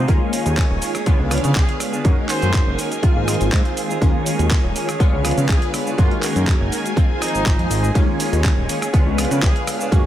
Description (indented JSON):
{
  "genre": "filtered disco house",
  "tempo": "122 BPM",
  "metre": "4/4",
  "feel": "straight",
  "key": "unclear",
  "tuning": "A4 = 440 Hz",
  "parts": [
    { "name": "clear horn section", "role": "melody", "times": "0.0-9.6 s", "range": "Eb4 to C5", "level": "-28 LUFS", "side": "left 1 dB", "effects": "vintage 12-bit sampler grit, sidechain pumping, low-pass filter, digital delay" },
    { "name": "funky polysynth comp", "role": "accompaniment", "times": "0.0-10.1 s", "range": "D3 to Db5", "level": "-24 LUFS", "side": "left 1 dB", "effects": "chorus, phaser, sidechain pumping, low-pass filter" },
    { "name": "phased string machine", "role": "sustained chords", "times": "0.0-10.1 s", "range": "D3 to Ab5", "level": "-28 LUFS", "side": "equal", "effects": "ensemble chorus, phaser, sidechain pumping, low-pass filter" },
    { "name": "direct-recorded clean electric guitar", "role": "riff", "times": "0.0-10.1 s", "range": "Eb3 to Ab4", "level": "-28 LUFS", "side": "right 4 dB", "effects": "vintage 12-bit sampler grit, sidechain pumping, low-pass filter" },
    { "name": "fat analog bass", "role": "bass", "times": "0.0-10.0 s", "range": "Eb1 to Db3", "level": "-21 LUFS", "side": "equal", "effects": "tube saturation, sidechain pumping, low-pass filter" },
    { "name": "dusty soul sampler-style drum kit", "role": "drums", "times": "0.1-10.0 s", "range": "handclaps, hi-hat, ride cymbal, rim click, shaker", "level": "-26 LUFS", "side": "right 1 dB", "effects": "sidechain pumping on perc, studio reverb, sidechain pumping on hats, sidechain pumping on cymbals" },
    { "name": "electronic kick drum", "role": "drums", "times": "0.1-10.0 s", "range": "none", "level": "-17 LUFS", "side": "equal", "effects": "studio reverb" }
  ],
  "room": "little or no reverb",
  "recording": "none",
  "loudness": "-16 LUFS",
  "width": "side -12 dB against mid",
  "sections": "0.1-10.1 A section",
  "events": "drop 0.1-10.1",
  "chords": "0.1 Eb7sus4; 1.1 Db7b9; 2.1 Gb69; 3.0 Ab6; 4.0 Eb7sus4; 5.0 Db7b9; 6.0 Gb69; 7.0 Ab6; 8.0 Eb7sus4; 8.9 Db7b9"
}